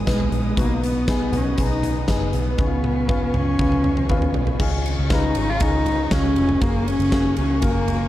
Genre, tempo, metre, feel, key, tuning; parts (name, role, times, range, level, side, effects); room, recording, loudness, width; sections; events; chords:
piano-driven pop; 119 BPM; 4/4; straight; A4 = 440 Hz
dark cello; melody; 0.0-8.1 s; G#3 to E#4; -23 LUFS; equal
warm upright piano; accompaniment; 0.0-8.1 s; G#2 to B4; -27 LUFS; left 4 dB
warm studio string section; sustained chords; 0.0-8.1 s; E#4 to D#6; -34 LUFS; equal
vintage muted fingered electric bass; bass; 0.0-8.1 s; E#1 to D#2; -24 LUFS; equal
huge arena drum kit; drums; 0.1-8.0 s; crash cymbal, hi-hat, kick drum, ride cymbal, snare drum, toms; -23 LUFS; equal
light reverb, small room reverb; dark, warm production; -18 LUFS; side -14 dB against mid
0.0-4.6 A section; 4.6-8.1 B section
drum fill 2.6-4.6
0.0 G#m; 0.6 B; 2.6 C#7; 4.6 C#; 6.6 F#add9